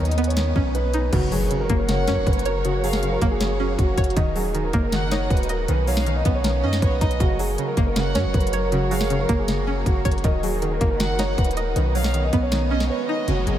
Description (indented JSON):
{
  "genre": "hip hop, trap",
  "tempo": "158 BPM",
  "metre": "4/4",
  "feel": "half-time",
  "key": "F# major",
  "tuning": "A4 = 440 Hz",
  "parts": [
    { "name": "dark concert grand piano", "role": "melody", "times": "0.0-13.6 s", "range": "F#4 to D#5", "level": "-27 LUFS", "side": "right 1 dB", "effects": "diffuse ambient delay" },
    { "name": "string-like resonator pluck", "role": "accompaniment", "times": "0.0-13.6 s", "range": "C#3 to D#5", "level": "-27 LUFS", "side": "right 1 dB", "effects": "chorus, phaser" },
    { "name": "dark symphonic string section", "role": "sustained chords", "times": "0.0-13.6 s", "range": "D#3 to C#5", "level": "-30 LUFS", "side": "right 2 dB", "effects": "none" },
    { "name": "warm 808-style bass", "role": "bass", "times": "0.0-13.6 s", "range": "D#1 to F#2", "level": "-24 LUFS", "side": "equal", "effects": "none" },
    { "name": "trap drum kit", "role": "drums", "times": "0.1-13.6 s", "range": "crash cymbal, hi-hat, kick drum, snare drum", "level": "-25 LUFS", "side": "equal", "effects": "none" },
    { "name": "impact and downlifter", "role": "sound effects", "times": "1.1-2.6, 13.3-13.6 s", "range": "none", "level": "-32 LUFS", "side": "left 1 dB", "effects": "none" },
    { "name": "warm studio violin section", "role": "second line", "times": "1.9-13.3 s", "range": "C#5 to F#5", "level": "-33 LUFS", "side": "equal", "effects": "diffuse ambient delay" }
  ],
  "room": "moderate huge ambient reverb, RT60 8.2 s",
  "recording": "dreamy mix soaked in reverb",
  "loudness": "-19 LUFS",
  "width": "side -11 dB against mid",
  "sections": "0.0-1.1 A section; 1.1-13.3 B section",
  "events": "impact 1.1-2.6; break 12.9-13.3",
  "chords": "0.0 Badd9; 1.1 F#; 4.2 D#m; 5.7 Badd9; 7.2 F#; 10.2 D#m; 11.8 Badd9"
}